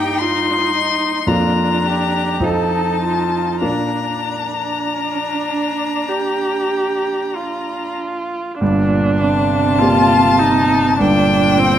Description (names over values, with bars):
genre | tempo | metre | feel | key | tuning
classical, slow romantic movement for piano quartet | 47-57 BPM | 4/4 | rubato | Bb major, G minor from 8.6 s | A4 = 440 Hz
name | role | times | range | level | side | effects
rich violin | melody | 0.0-11.8 s | G5 to C6 | -19 LUFS | left 6 dB | none
rich cello | second line | 0.0-11.8 s | Bb2 to A4 | -22 LUFS | right 5 dB | none
rich viola | accompaniment | 0.0-11.8 s | C4 to G4 | -20 LUFS | right 2 dB | none
warm concert grand piano | accompaniment | 0.0-11.8 s | G1 to Eb5 | -20 LUFS | equal | none
room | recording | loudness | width
moderate recital hall reverb, RT60 1.6 s | close, detailed microphones | -15 LUFS | side -10 dB against mid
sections
0.0-8.6 A section; 8.6-11.8 B section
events
none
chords
0.0 Eb/G; 1.3 Bb/F; 2.4 F7; 3.6 Bb; 8.6 Gm